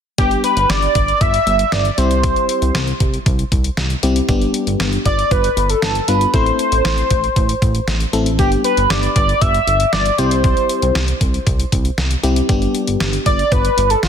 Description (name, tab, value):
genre	synth-pop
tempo	117 BPM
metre	4/4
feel	straight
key	G major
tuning	A4 = 440 Hz
part	octave-doubled lead	melody	0.2-14.1 s	G4 to E5	-17 LUFS	equal	chorus, phaser, ping-pong delay
part	FM electric piano	accompaniment	0.2-13.2 s	G3 to A4	-21 LUFS	left 3 dB	chorus
part	chorused synth bass	bass	0.2-14.1 s	G1 to C2	-19 LUFS	equal	none
part	detuned 8-bit digital drum machine	drums	0.2-14.1 s	hi-hat, kick drum, snare drum	-19 LUFS	equal	none
room	moderate scoring stage reverb, RT60 1.9 s, digital ambience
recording	dense, heavily limited modern master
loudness	-14 LUFS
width	side -8 dB against mid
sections	0.2-14.1 A section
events	none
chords	0.2 G; 2.0 C; 4.3 G; 6.3 Am; 8.4 G; 10.2 C; 12.5 G